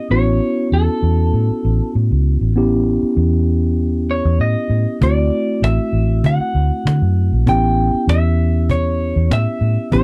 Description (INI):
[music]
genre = straight-eighth soul blues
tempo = 98 BPM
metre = 4/4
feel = swing 54% on 16ths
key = A mixolydian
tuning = A4 = 440 Hz
[part]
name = electric guitar through a small old amp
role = melody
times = 0.0-10.0 s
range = A4 to G5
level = -25 LUFS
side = equal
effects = none
[part]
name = mellow tine electric piano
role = accompaniment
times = 0.0-10.0 s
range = A3 to G4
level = -23 LUFS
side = equal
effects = none
[part]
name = vintage muted fingered electric bass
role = bass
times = 0.1-10.0 s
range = A1 to D3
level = -18 LUFS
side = equal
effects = none
[part]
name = cajon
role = drums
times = 5.0-10.0 s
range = none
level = -24 LUFS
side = equal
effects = none
[sound]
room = little or no reverb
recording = dry, close 1970s-style studio recording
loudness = -17 LUFS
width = mono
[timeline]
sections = 0.0-10.0 A section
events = none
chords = 0.0 A7; 5.0 D7; 7.5 A7